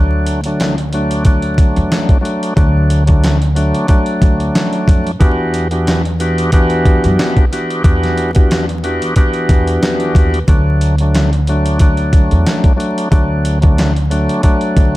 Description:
hip hop, boom-bap hip-hop; 91 BPM; 4/4; swing 56% on 16ths; D major; A4 = 440 Hz
bright tonewheel organ; accompaniment; 0.0-15.0 s; E3 to G4; -16 LUFS; equal; slow rotary speaker, high-pass filter, low-pass filter
upright bass; bass; 0.0-15.0 s; D2 to F#2; -15 LUFS; equal
dusty soul sampler-style drum kit; drums; 0.3-14.9 s; handclaps, hi-hat, kick drum, snare drum; -13 LUFS; equal
little or no reverb; dark, warm production, vinyl crackle; -11 LUFS; side -17 dB against mid
0.0-15.0 A section
0.0 D; 5.2 Em7; 10.5 D

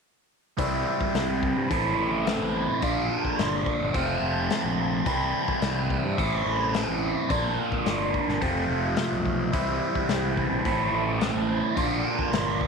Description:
psychedelic rock; 107 BPM; 4/4; straight; C mixolydian; A4 = 441 Hz
overdriven electric guitar; riff; 0.6-12.7 s; F2 to F4; -25 LUFS; right 1 dB; phaser
fuzz fingered electric bass; bass; 0.6-12.6 s; F1 to G2; -31 LUFS; equal; overdrive
vintage drum kit; drums; 0.6-12.7 s; hi-hat, kick drum, snare drum; -31 LUFS; left 4 dB
tonewheel organ; sustained chords; 9.5-12.7 s; E4 to Bb5; -35 LUFS; right 9 dB; slow rotary speaker, overdrive, chorus vibrato
light reverb; 1960s-style stereo; -23 LUFS; side -5 dB against mid
0.6-12.7 A section
0.6 C; 1.7 Am; 2.8 Bb; 3.9 F; 5.1 C; 6.2 Am; 7.3 Bb; 8.4 F; 9.5 C; 10.7 Am; 11.8 Bb

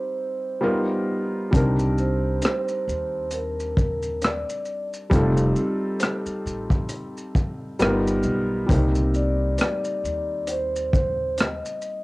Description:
lo-fi hip hop; 67 BPM; 4/4; swing 56% on 16ths; C dorian; A4 = 440 Hz
vibraphone with soft mallets; melody; 0.0-12.0 s; Bb4 to D5; -28 LUFS; right 1 dB; low-pass filter, tape echo
felt-muted upright piano; accompaniment; 0.0-12.0 s; G3 to A#4; -26 LUFS; equal; low-pass filter, cassette tape
upright bass; bass; 1.5-11.6 s; F1 to Eb2; -26 LUFS; equal
crunchy breakbeat drum kit; drums; 1.5-12.0 s; hi-hat, kick drum, rim click, shaker; -24 LUFS; equal; cassette tape
light reverb; home recording on cassette; -21 LUFS; side -22 dB against mid
0.0-1.5 A section; 1.5-12.0 B section
break 0.0-1.5
0.0 Fsus2; 0.6 G7alt; 1.5 Cm9; 5.1 F9; 7.8 G7alt; 8.7 Cm9

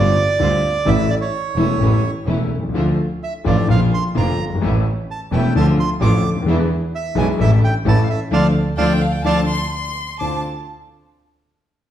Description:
tango; 129 BPM; 4/4; rubato; D minor; A4 = 440 Hz
bandoneon; melody; 0.0-10.4 s; C#5 to D6; -22 LUFS; right 4 dB
warm concert grand piano; accompaniment; 0.0-10.4 s; E1 to C5; -19 LUFS; left 3 dB
rich studio string section; stabs; 0.0-10.4 s; G3 to F4; -29 LUFS; right 1 dB
clear double bass; bass; 0.0-10.4 s; E1 to E2; -20 LUFS; right 2 dB
warm violin; second line; 8.8-10.4 s; F5 to C6; -25 LUFS; left 2 dB
wet large studio reverb, RT60 1.2 s; heard from further back in the room; -15 LUFS; side -11 dB against mid
0.0-10.2 A section; 10.2-11.9 B section
band accent 8.3-10.2
0.0 G7sus4; 0.9 A; 2.7 Dm; 3.7 Bb; 4.6 A; 5.5 Dm; 6.5 E7; 7.4 Asus4; 7.9 A; 8.3 Dm7; 9.7 N.C.; 10.2 Dm7

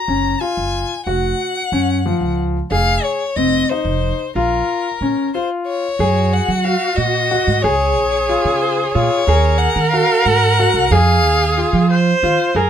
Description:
contemporary instrumental, chamber music in an uneven meter; 183 BPM (eighths); 5/8; straight; A4 = 440 Hz
warm violin; melody; 0.0-11.9 s; Bb4 to Bb5; -20 LUFS; left 5 dB
clear grand piano; arpeggios; 0.1-12.7 s; F3 to Ab4; -19 LUFS; left 2 dB
upright bass; bass; 0.1-12.7 s; F1 to Gb3; -18 LUFS; right 3 dB
clear viola; second line; 6.0-12.7 s; Gb4 to C5; -18 LUFS; right 3 dB
light reverb; -14 LUFS; side -9 dB against mid
0.0-6.0 A section; 6.0-12.7 B section
break 5.2-6.0
0.0 Gbmaj7(no3); 2.7 Fm7; 4.4 Bbm; 6.0 Gb69; 7.6 Db6; 9.3 Ebsus4; 10.9 Fm7

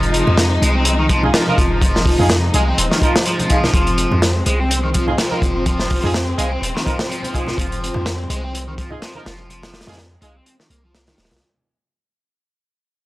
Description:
breakbeat, breaks; 125 BPM; 4/4; swing 55% on 16ths; F minor; A4 = 440 Hz
rich studio string section; sustained chords; 0.0-11.4 s; C3 to Eb4; -24 LUFS; left 1 dB; sidechain pumping
biting overdriven guitar; riff; 0.0-11.3 s; Eb3 to C4; -22 LUFS; equal; phaser, tape echo
warm 808-style bass; bass; 0.0-11.4 s; Eb1 to F2; -20 LUFS; equal
crunchy breakbeat drum kit; drums; 0.0-11.4 s; hi-hat, kick drum, snare drum; -19 LUFS; equal
congas; percussion; 0.3-11.4 s; -28 LUFS; right 1 dB
mellow horn section; stabs; 1.2-10.3 s; Eb4 to Bb4; -24 LUFS; right 1 dB; vintage 12-bit sampler grit, tape echo
small room ambience; dry, gritty hardware recording; -15 LUFS; side -18 dB against mid
0.0-11.4 A section
drop 0.0-11.4; fade-out 3.7-11.4
0.0 Fm7

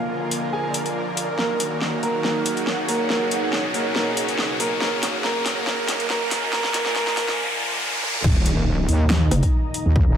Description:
heavy wobble dubstep; 140 BPM; 4/4; swing 53% on 16ths, half-time; Eb minor; A4 = 441 Hz
warm baby grand piano; melody; 0.0-7.4 s; Bb3 to Ab5; -26 LUFS; right 1 dB; digital delay
supersaw pad; sustained chords; 0.0-10.2 s; Bb2 to Eb5; -29 LUFS; right 1 dB; sidechain pumping, low-pass filter
riser and impact; sound effects; 0.0-10.0 s; -27 LUFS; equal
ethereal airy pad; texture; 0.0-10.2 s; B2 to Bb5; -29 LUFS; right 1 dB; ensemble chorus, built-in reverb, sidechain pumping
dubstep drum kit; drums; 0.3-9.8 s; crash cymbal, hi-hat, snare drum, toms; -26 LUFS; equal; high-pass filter on hats, studio reverb, high-pass filter on snare, high-pass filter on toms, high-pass filter on cymbals
wobble bass; bass; 8.2-10.2 s; Eb1 to Eb2; -19 LUFS; equal; chorus, overdrive
electronic kick drum; drums; 8.2-10.0 s; -18 LUFS; equal; studio reverb
pulsing pluck wobble bass; bass; 9.3-9.4 s; Gb1; -18 LUFS; equal; chorus, overdrive
moderate lush hall reverb, RT60 1.9 s, digital ambience; high-pass filter; -20 LUFS; side -9 dB against mid
0.0-8.2 A section; 8.2-10.2 B section
build-up 0.0-8.2; riser 0.0-8.2; filter sweep 0.0-8.2; drum fill 1.4-7.4, 7.9-8.2; break 7.4-8.2; drop 8.2-10.2; impact 8.2-10.0
0.0 Bb; 1.4 Ebm; 3.1 Badd9; 4.8 Gb; 6.5 Bb; 8.2 Eb5

